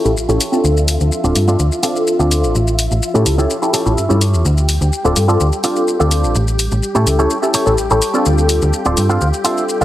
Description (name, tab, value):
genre	filtered disco house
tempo	126 BPM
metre	4/4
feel	straight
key	D minor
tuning	A4 = 441 Hz
part	funky polysynth comp	accompaniment	0.0-9.8 s	C4 to A4	-17 LUFS	equal	chorus, phaser, low-pass filter
part	string machine, full ensemble	sustained chords	0.0-9.8 s	F4 to G5	-24 LUFS	left 1 dB	ensemble chorus, low-pass filter
part	electric guitar with an envelope filter	riff	0.0-9.8 s	F4 to A5	-21 LUFS	right 2 dB	vintage 12-bit sampler grit, low-pass filter
part	slap-like FM bass	bass	0.1-9.8 s	D1 to A2	-15 LUFS	equal	low-pass filter
part	electronic shaker and hi-hat	drums	0.1-9.8 s	none	-22 LUFS	left 2 dB	none
room	light reverb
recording	heavily compressed radio sound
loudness	-12 LUFS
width	side -14 dB against mid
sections	0.0-9.8 A section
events	filter sweep 0.0-9.8; clean electric guitar fill 3.5-4.5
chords	0.0 A7; 0.6 Dm7; 2.5 A7; 4.5 Dm7; 6.4 A7; 8.3 Dm7